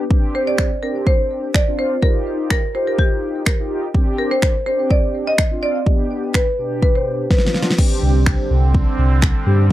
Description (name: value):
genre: dance-pop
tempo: 125 BPM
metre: 4/4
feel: straight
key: C minor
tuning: A4 = 441 Hz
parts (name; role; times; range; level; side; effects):
- mellow synth brass; accompaniment; 0.0-9.7 s; B2 to G4; -24 LUFS; equal; chorus, sidechain pumping
- pop drum kit; drums; 0.1-9.7 s; crash cymbal, finger snaps, kick drum, snare drum; -16 LUFS; equal; none
- marimba with medium hard mallets; melody; 0.3-7.6 s; G4 to Eb5; -21 LUFS; equal; none
- sweeping resonant pad; sustained chords; 7.8-9.7 s; D3 to C4; -24 LUFS; right 4 dB; chorus, sidechain pumping
- sub bass with octave; bass; 8.0-9.7 s; C2 to G2; -14 LUFS; equal; sidechain pumping
room: little or no reverb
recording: dry, close 1970s-style studio recording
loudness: -15 LUFS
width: side -14 dB against mid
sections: 0.0-7.8 A section; 7.8-9.7 B section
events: drum fill 7.3-7.8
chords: 0.1 Csus2; 2.0 Ebadd9; 3.9 Csus2; 5.9 G/B; 7.8 Csus2